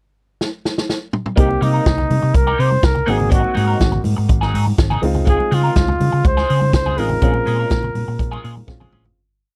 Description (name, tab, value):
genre	disco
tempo	123 BPM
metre	4/4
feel	straight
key	Bb minor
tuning	A4 = 442 Hz
part	vintage drum kit	drums	0.4-9.2 s	hi-hat, kick drum, snare drum, toms	-20 LUFS	equal	none
part	breathy flugelhorn	melody	1.4-8.7 s	Eb4 to C5	-23 LUFS	equal	none
part	electric guitar at the edge of break-up	accompaniment	1.4-9.1 s	Gb3 to Bb4	-28 LUFS	equal	wah
part	warm grand piano	accompaniment	1.4-9.2 s	Ab3 to G4	-28 LUFS	equal	none
part	fingered electric bass	bass	1.4-9.1 s	Ab1 to Db3	-21 LUFS	equal	none
part	congas	percussion	1.4-9.2 s	none	-30 LUFS	equal	none
room	little or no reverb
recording	dry, close 1970s-style studio recording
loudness	-17 LUFS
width	mono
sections	0.0-1.4 pickup bar; 1.4-9.2 verse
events	drum fill 0.4-1.4, 8.7-9.2; fade-out 7.2-9.2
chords	0.0 N.C.; 1.4 Cm7; 3.1 Ab7; 5.0 Dbmaj7; 7.2 Bbm7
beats	0.41 0.89 | 1.38 1.86 2.35 2.84 | 3.32 3.81 4.30 4.78 | 5.27 5.76 6.24 6.73 | 7.22 7.70 8.19 8.68